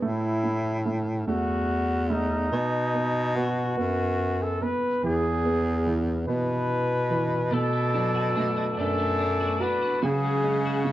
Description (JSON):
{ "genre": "six-eight pop ballad", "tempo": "48 BPM (dotted quarters)", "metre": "6/8", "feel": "straight", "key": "unclear", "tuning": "A4 = 440 Hz", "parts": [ { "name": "warm flugelhorn", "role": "melody", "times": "0.0-10.9 s", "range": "D#4 to B4", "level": "-28 LUFS", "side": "left 1 dB", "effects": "none" }, { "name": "warm upright piano", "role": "accompaniment", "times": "0.0-10.9 s", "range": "B2 to F#4", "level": "-29 LUFS", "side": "right 3 dB", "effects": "none" }, { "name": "bright bass clarinet", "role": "bass", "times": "0.0-10.9 s", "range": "E2 to C#3", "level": "-27 LUFS", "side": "equal", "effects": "none" }, { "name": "mellow tonewheel organ", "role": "sustained chords", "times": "7.5-10.9 s", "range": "G#4 to D6", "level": "-36 LUFS", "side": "equal", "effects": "slow rotary speaker" }, { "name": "twelve-string electric guitar", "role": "arpeggios", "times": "7.5-10.9 s", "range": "F#3 to F#4", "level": "-36 LUFS", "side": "left 4 dB", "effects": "ensemble chorus" } ], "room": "light reverb, studio ambience", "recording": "worn, warbling old tape, cassette tape, warbly pitch drift", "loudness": "-23 LUFS", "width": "side -14 dB against mid", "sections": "0.0-10.9 A section", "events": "none", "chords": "0.0 A5; 2.5 B; 5.0 E; 7.5 Bm7; 10.0 F#sus2/C#" }